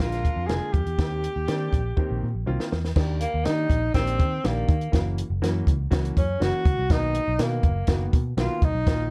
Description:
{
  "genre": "uptempo 1960s-style soul",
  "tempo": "122 BPM",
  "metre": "4/4",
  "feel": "straight",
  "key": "unclear",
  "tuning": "A4 = 438 Hz",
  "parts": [
    { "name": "breathy tenor saxophone", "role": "melody", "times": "0.0-9.1 s", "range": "Bb3 to Ab4", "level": "-30 LUFS", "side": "equal", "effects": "plate reverb" },
    { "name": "clear horn section", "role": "second line", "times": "0.0-0.7 s", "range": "D4 to Bb4", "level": "-41 LUFS", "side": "equal", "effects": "plate reverb" },
    { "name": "warm upright piano", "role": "accompaniment", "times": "0.0-9.1 s", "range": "D3 to G4", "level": "-34 LUFS", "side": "equal", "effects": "none" },
    { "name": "vintage muted picked electric bass", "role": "bass", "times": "0.0-9.1 s", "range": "F1 to Eb3", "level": "-29 LUFS", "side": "equal", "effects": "none" },
    { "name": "compact cocktail drum kit", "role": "drums", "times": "0.0-9.0 s", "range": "crash cymbal, hi-hat, kick drum, snare drum", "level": "-26 LUFS", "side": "equal", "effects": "none" }
  ],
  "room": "light reverb",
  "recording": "dark, warm production",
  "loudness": "-24 LUFS",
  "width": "mono",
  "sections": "0.0-3.0 A section; 3.0-9.1 B section",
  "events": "drum fill 2.0-3.0; tenor saxophone solo 3.0-9.1",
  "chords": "0.0 Bb7; 1.0 Eb6; 3.0 Ebmaj7; 4.9 Gb7; 6.9 Bmaj7"
}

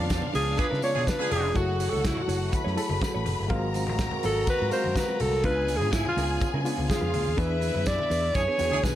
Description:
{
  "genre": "disco",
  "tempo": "124 BPM",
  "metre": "4/4",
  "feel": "straight",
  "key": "unclear",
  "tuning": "A4 = 440 Hz",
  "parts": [
    { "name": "clear symphonic string section", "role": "second line", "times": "0.0-9.0 s", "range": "D4 to B5", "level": "-34 LUFS", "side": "equal", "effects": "none" },
    { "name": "barky reed electric piano", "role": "accompaniment", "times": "0.0-9.0 s", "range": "C#3 to E#5", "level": "-34 LUFS", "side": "left 3 dB", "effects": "fast tremolo" },
    { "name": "mellow electric guitar", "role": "accompaniment", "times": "0.0-8.9 s", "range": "F#3 to C#5", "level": "-37 LUFS", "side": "right 5 dB", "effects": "none" },
    { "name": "mellow French horn section", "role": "sustained chords", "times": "0.0-9.0 s", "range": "C#3 to G#4", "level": "-36 LUFS", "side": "equal", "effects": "none" },
    { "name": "fingered electric bass", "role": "bass", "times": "0.0-8.9 s", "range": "E#1 to C#3", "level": "-30 LUFS", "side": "equal", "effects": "none" },
    { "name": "damped 70s drum kit", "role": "drums", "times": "0.1-9.0 s", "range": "hi-hat, kick drum, snare drum", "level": "-31 LUFS", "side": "equal", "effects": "none" },
    { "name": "tambourine", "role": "percussion", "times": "0.1-9.0 s", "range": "none", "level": "-45 LUFS", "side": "right 5 dB", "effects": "none" },
    { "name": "congas", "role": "percussion", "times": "0.2-9.0 s", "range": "none", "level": "-38 LUFS", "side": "left 3 dB", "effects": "none" },
    { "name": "breathy alto saxophone", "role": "melody", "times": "0.3-9.0 s", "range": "E4 to D5", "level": "-28 LUFS", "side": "equal", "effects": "none" },
    { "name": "warm horn section", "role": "stabs", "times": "0.6-1.5, 8.3-8.8 s", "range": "D4 to G#4", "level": "-32 LUFS", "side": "right 2 dB", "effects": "none" }
  ],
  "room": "little or no reverb",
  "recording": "none",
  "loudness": "-24 LUFS",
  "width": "side -12 dB against mid",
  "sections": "0.0-9.0 A section",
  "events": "band accent 0.0-1.6, 7.4-9.0; alto saxophone solo 0.0-9.0",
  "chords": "0.0 C#7b9; 1.6 F#m9; 3.5 G#13; 5.4 C#7b9; 7.4 E7"
}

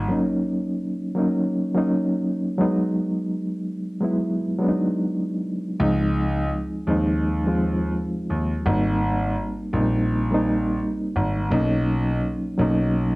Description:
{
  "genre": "lo-fi hip hop",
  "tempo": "84 BPM",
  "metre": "4/4",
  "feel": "swing 64% on 16ths",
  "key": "unclear",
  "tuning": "A4 = 439 Hz",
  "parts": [
    { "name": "reed electric piano", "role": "accompaniment", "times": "0.0-13.2 s", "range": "F3 to F4", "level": "-22 LUFS", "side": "equal", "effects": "fast tremolo, cassette tape, low-pass filter" },
    { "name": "warm grand piano", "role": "bass", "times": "0.0-0.1, 5.8-13.2 s", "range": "Ab1 to Eb2", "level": "-24 LUFS", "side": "equal", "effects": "none" }
  ],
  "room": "moderate spring reverb, RT60 1.4 s",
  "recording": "dark, warm production",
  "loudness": "-21 LUFS",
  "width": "side -22 dB against mid",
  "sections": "0.0-13.2 A section",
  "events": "break 0.1-5.8",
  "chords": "0.1 Gb6; 2.6 Emaj9; 5.8 Dbmaj9; 8.7 Abmaj9; 11.5 Bmaj9"
}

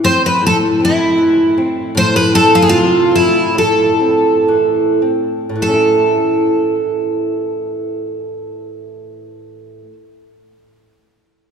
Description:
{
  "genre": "fado",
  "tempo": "49-78 BPM",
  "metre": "2/4",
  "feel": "rubato",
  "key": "unclear",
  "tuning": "A4 = 440 Hz",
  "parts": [
    { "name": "picked twelve-string acoustic guitar", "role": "melody", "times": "0.0-9.9 s", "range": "E4 to C5", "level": "-13 LUFS", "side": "right 2 dB", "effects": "none" },
    { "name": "flamenco guitar", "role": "accompaniment", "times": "0.0-10.0 s", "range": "A2 to E4", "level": "-17 LUFS", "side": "left 2 dB", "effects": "none" }
  ],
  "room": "wet church reverb, RT60 3.5 s",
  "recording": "recorded in a church or concert hall",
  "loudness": "-11 LUFS",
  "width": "side -7 dB against mid",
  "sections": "0.0-5.6 A section; 5.6-10.4 B section",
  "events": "slowing down 2.0-5.6",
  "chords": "0.0 Am; 5.6 A"
}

